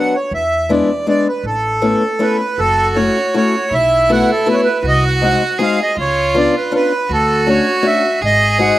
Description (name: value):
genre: musette waltz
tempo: 160 BPM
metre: 3/4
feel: straight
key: F# minor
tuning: A4 = 440 Hz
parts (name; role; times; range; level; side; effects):
- accordion; melody; 0.0-8.8 s; A4 to F#5; -16 LUFS; right 2 dB; none
- fingerpicked acoustic archtop guitar; accompaniment; 0.0-8.8 s; F#3 to F#4; -17 LUFS; left 3 dB; slapback echo
- upright bass; bass; 0.3-8.7 s; F#1 to E2; -21 LUFS; equal; none
- clear violin; second line; 2.6-8.8 s; E4 to G#4; -19 LUFS; right 2 dB; slapback echo
room: little or no reverb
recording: recorded outdoors, with no room sound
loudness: -12 LUFS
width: side -15 dB against mid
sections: 0.0-2.6 A section; 2.6-8.8 B section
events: none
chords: 0.3 E7; 1.4 Aadd9; 2.6 F#m7; 3.7 B7sus4; 4.8 G#7/B#; 6.0 C#7b9; 7.1 Dmaj7; 8.2 G#7